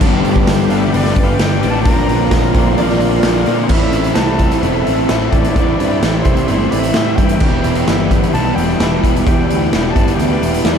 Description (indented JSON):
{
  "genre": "rock, shoegaze and dream pop",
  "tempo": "130 BPM",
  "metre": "4/4",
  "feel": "straight",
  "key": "A minor",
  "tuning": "A4 = 440 Hz",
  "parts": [
    { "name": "sweeping resonant pad", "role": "sustained chords", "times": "0.0-10.8 s", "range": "B3 to D6", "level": "-24 LUFS", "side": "equal", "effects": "chorus" },
    { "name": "picked twelve-string acoustic guitar", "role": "arpeggios", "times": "0.0-3.7 s", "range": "G4 to D5", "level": "-26 LUFS", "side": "right 4 dB", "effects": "ensemble chorus, diffuse ambient delay" },
    { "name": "electric guitar through a small old amp", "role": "riff", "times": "0.0-10.8 s", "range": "E2 to G4", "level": "-20 LUFS", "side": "right 8 dB", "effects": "reverse reverb" },
    { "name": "overdriven semi-hollow guitar", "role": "riff", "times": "0.0-10.8 s", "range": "E2 to G4", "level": "-18 LUFS", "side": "left 7 dB", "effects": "lush chorus" },
    { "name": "fuzz picked electric bass", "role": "bass", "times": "0.0-10.8 s", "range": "E1 to Bb2", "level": "-19 LUFS", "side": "equal", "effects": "overdrive" },
    { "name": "raw garage drum kit", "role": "drums", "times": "0.0-10.8 s", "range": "crash cymbal, hi-hat, kick drum, snare drum", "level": "-16 LUFS", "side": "equal", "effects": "none" },
    { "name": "breathy bright jazz flute", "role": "melody", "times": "0.7-10.8 s", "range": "C5 to Bb5", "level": "-24 LUFS", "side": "left 2 dB", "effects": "diffuse ambient delay" }
  ],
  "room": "moderate huge ambient reverb, RT60 6.9 s",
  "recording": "dreamy mix soaked in reverb",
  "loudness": "-11 LUFS",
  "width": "side -7 dB against mid",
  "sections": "0.0-3.7 A section; 3.7-10.8 B section",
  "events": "none",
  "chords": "0.0 G; 1.9 Bbadd9; 3.7 Am; 7.4 Em"
}